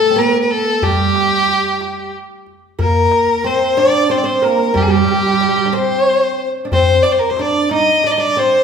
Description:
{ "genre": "Arabic maqam ensemble", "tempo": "61 BPM (dotted quarters)", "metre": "6/8", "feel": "straight", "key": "unclear", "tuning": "A4 = 440 Hz", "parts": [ { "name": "clear violin", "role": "melody", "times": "0.0-8.6 s", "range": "G4 to Eb5", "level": "-14 LUFS", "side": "left 1 dB", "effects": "none" }, { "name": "oud", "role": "second line", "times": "0.0-8.6 s", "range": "G3 to Eb4", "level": "-18 LUFS", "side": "right 4 dB", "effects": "none" }, { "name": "darbuka", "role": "percussion", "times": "0.2-8.1 s", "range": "none", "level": "-21 LUFS", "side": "left 2 dB", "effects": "none" } ], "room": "wet recital hall reverb, RT60 1.4 s", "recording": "minimal, uncompressed stereo recording", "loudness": "-12 LUFS", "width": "side -6 dB against mid", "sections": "0.0-2.8 A section; 2.8-8.6 B section", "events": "none", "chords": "none", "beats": "| 0.83 1.81 | 2.80 3.78 | 4.76 5.74 | 6.72 7.70" }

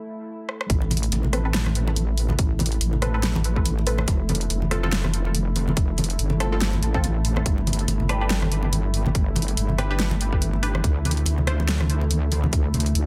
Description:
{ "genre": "deep dubstep", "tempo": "142 BPM", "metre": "4/4", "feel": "swing 57% on 16ths, half-time", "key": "A minor", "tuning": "A4 = 440 Hz", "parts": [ { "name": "deep dark ambient pad", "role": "sustained chords", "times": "0.0-13.1 s", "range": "A3 to E4", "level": "-36 LUFS", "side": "equal", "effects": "chorus, built-in reverb" }, { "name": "deep house drum kit", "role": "drums", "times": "0.5-13.0 s", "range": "hi-hat, rim click, snare drum", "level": "-30 LUFS", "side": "equal", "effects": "overdrive, high-pass filter on snare, high-pass filter on hats" }, { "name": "wobble bass", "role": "bass", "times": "0.7-13.1 s", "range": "F1 to D2", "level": "-26 LUFS", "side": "equal", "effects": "chorus" }, { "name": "electronic kick drum", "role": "drums", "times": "0.7-12.6 s", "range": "none", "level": "-25 LUFS", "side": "equal", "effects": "none" }, { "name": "congas", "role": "percussion", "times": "0.8-12.8 s", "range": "none", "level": "-31 LUFS", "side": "equal", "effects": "dub echo" }, { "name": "filtered dub chord stab", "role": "stabs", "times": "1.3-11.6 s", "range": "C4 to C5", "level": "-34 LUFS", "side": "equal", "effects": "phaser, dub echo" } ], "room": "digital ambience", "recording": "dense, heavily limited modern master, high-pass filter", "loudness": "-23 LUFS", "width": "mono", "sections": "0.7-13.1 A section", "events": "break 0.0-0.7; drum fill 0.5; drop 0.7-13.1", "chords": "0.0 N.C.; 0.7 Amadd9; 4.1 F; 7.5 G; 10.8 D5", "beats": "0.28 | 0.70 1.12 1.54 1.97 | 2.39 2.81 3.23 3.66 | 4.08 4.50 4.92 5.35 | 5.77 6.19 6.61 7.04 | 7.46 7.88 8.30 8.73 | 9.15 9.57 9.99 10.42 | 10.84 11.26 11.68 12.11 | 12.53 12.95" }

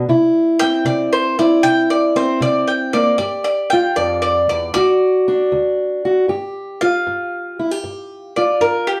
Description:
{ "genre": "acoustic country blues, solo or duo", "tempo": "77 BPM", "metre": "4/4", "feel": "swing 68% on 8ths", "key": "unclear", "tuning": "A4 = 441 Hz", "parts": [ { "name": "fingerpicked steel-string acoustic guitar", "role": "accompaniment", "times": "0.0-9.0 s", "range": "D2 to G4", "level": "-19 LUFS", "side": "equal", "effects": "none" }, { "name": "bowl-back mandolin", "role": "melody", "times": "0.6-9.0 s", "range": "G4 to G5", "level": "-20 LUFS", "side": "equal", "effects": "none" } ], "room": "wet studio reverb, RT60 0.6 s", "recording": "heard from further back in the room", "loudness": "-17 LUFS", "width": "mono", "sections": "0.0-6.3 A section; 6.3-9.0 A section", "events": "mandolin solo 0.0-6.3, 6.3-9.0", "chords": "0.1 C; 3.2 Dmadd11; 4.7 D; 6.3 G7(no3)", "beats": "| 0.08 0.86 1.63 2.41 | 3.19 3.96 4.74 5.51 | 6.29 7.07 7.84 8.62" }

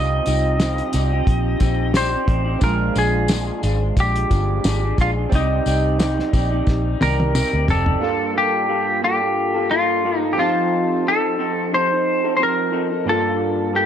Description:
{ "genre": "indie pop, bedroom pop", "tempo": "89 BPM", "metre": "4/4", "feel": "swing 55% on 16ths", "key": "C dorian", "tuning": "A4 = 441 Hz", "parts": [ { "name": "clean lap steel guitar", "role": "melody", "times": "0.0-13.9 s", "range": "Eb4 to Eb5", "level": "-21 LUFS", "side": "equal", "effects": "lush chorus, slapback echo" }, { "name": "electric guitar through a small old amp", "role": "accompaniment", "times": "0.0-13.9 s", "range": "Bb2 to D5", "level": "-24 LUFS", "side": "left 3 dB", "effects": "wide subtle chorus, vibrato effect" }, { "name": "warm analog keys", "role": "accompaniment", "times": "0.0-13.9 s", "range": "G2 to A5", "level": "-27 LUFS", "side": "right 6 dB", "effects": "chorus" }, { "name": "vintage muted fingered electric bass", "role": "bass", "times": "0.0-8.0 s", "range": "F1 to D2", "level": "-21 LUFS", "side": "equal", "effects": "none" }, { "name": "cloth-damped thuddy drum kit", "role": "drums", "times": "0.3-8.0 s", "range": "hi-hat, kick drum, snare drum, toms", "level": "-20 LUFS", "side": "equal", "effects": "none" }, { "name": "tambourine", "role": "percussion", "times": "0.3-7.9 s", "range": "none", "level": "-35 LUFS", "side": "left 9 dB", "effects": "none" } ], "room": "light reverb, studio reverb", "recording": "none", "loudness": "-17 LUFS", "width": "side -9 dB against mid", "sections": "0.0-8.0 A section; 8.0-13.9 B section", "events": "drum fill 6.7-8.0", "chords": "0.0 Cmadd9; 2.6 Bb7; 5.3 Cmadd9; 8.0 Gm9; 10.4 F7; 13.1 Gm9", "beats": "0.59 1.27 1.95 | 2.62 3.29 3.97 4.64 | 5.32 5.99 6.67 7.34 | 8.02 8.69 9.37 10.04 | 10.72 11.39 12.06 12.74 | 13.41" }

